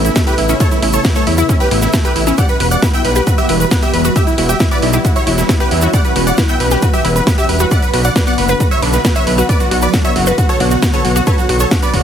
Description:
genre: uplifting trance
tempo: 135 BPM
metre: 4/4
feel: straight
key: unclear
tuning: A4 = 436 Hz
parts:
  - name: big supersaw lead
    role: melody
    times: 0.0-12.0 s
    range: E4 to G5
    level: -18 LUFS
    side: equal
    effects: sidechain pumping, tape echo
  - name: analog pluck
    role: second line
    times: 0.0-12.0 s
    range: E4 to G5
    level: -23 LUFS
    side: right 3 dB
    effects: chorus, sidechain pumping, tape echo
  - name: analog string pad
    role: sustained chords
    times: 0.0-12.0 s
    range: C#3 to F#4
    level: -21 LUFS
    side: equal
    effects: ensemble chorus, phaser, sidechain pumping
  - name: fat analog bass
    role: bass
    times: 0.0-12.0 s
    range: E1 to E2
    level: -16 LUFS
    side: equal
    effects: sidechain pumping
  - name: techno drum kit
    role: drums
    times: 0.0-12.0 s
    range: hi-hat, snare drum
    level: -21 LUFS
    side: equal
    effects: sidechain pumping on hats, sidechain pumping on cymbals
  - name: egg shaker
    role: percussion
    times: 0.1-11.9 s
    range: none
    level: -27 LUFS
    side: right 4 dB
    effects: none
  - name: wide unison pluck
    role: arpeggios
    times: 0.2-11.9 s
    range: A3 to B4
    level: -22 LUFS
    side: left 4 dB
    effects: flanger, sidechain pumping, tape echo
  - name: electronic kick drum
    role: drums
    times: 0.2-12.0 s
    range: none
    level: -15 LUFS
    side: equal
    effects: none
room: little or no reverb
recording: heavily compressed radio sound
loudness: -11 LUFS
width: side -9 dB against mid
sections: 0.0-12.0 A section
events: none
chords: 0.0 Aadd9; 2.4 Emadd9; 7.7 Bm

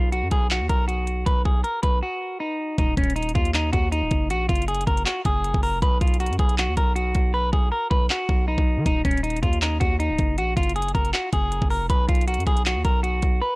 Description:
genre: hip hop, trap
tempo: 158 BPM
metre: 4/4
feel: half-time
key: unclear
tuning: A4 = 440 Hz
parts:
  - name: clean electric guitar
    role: melody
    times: 0.0-13.6 s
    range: C#4 to B4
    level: -25 LUFS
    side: equal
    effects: tape echo
  - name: hard-hitting 808-style bass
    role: bass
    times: 0.0-13.4 s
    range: C#1 to D#3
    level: -24 LUFS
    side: equal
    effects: tube saturation
  - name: trap drum kit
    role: drums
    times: 0.1-13.3 s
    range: handclaps, hi-hat, kick drum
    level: -23 LUFS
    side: equal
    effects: none
room: little or no reverb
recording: dry, gritty hardware recording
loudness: -20 LUFS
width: side -25 dB against mid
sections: 0.0-2.8 A section; 2.8-13.6 B section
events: break 2.0-2.8; hi-hats muted 7.3-8.9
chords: 0.0 B5; 2.8 D#m; 4.3 N.C.; 5.8 B5; 8.9 D#m; 10.4 N.C.; 11.9 B5

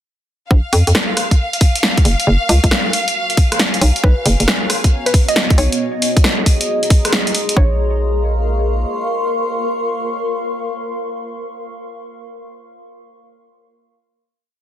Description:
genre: UK garage, two-step garage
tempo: 136 BPM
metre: 4/4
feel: swing 66% on 16ths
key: Bb minor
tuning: A4 = 438 Hz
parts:
  - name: clear symphonic violin section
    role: sustained chords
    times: 0.5-5.8 s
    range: F5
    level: -23 LUFS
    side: left 1 dB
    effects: sidechain pumping
  - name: hollow knocking FM bass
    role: bass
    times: 0.5-8.8 s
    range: Gb1 to F2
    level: -14 LUFS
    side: equal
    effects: none
  - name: electronic kick drum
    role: drums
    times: 0.5-7.7 s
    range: none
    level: -12 LUFS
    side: equal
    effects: overdrive
  - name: granular cloud pad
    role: texture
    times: 2.4-11.3 s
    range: B3 to Db6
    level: -22 LUFS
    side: left 1 dB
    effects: built-in reverb, sidechain pumping
  - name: punchy analog drum machine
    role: drums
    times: 0.7-7.6 s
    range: hi-hat, rim click, snare drum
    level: -16 LUFS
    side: equal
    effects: overdrive
  - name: mallet-like synth pluck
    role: melody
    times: 4.0-11.1 s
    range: B4 to D#5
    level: -24 LUFS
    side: right 1 dB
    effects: chorus, dub echo
room: light reverb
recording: dense, heavily limited modern master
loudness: -13 LUFS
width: side -11 dB against mid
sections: 0.5-7.6 groove; 7.6-11.1 final chord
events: fade-in on ambient pad 0.5-7.6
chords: 0.5 Bbm; 2.1 Gbmaj7; 3.8 Bmaj7; 5.8 Ab7; 7.6 Bbm

